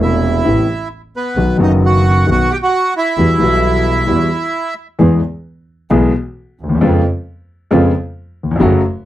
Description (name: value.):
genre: tango.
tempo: 133 BPM.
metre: 4/4.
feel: rubato.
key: E minor.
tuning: A4 = 440 Hz.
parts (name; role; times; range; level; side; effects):
bandoneon; melody; 0.0-4.7 s; B3 to G5; -16 LUFS; right 3 dB; slapback echo.
warm concert grand piano; accompaniment; 0.0-8.8 s; E1 to G#4; -13 LUFS; left 2 dB; none.
clear double bass; bass; 0.0-8.8 s; E1 to E#2; -17 LUFS; right 2 dB; none.
room: little or no reverb.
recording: dry, close 1970s-style studio recording.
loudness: -12 LUFS.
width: side -14 dB against mid.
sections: 0.0-5.0 A section; 5.0-9.1 B section.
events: none.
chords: 0.0 Amadd9; 1.4 B; 3.2 Emadd9; 5.0 E; 6.8 C#7/E#.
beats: 0.01 0.46 0.91 | 1.36 1.81 2.27 2.72 | 3.17 3.63 4.08 4.54 | 5.00 5.45 5.91 6.36 | 6.81 7.26 7.71 8.16 | 8.62.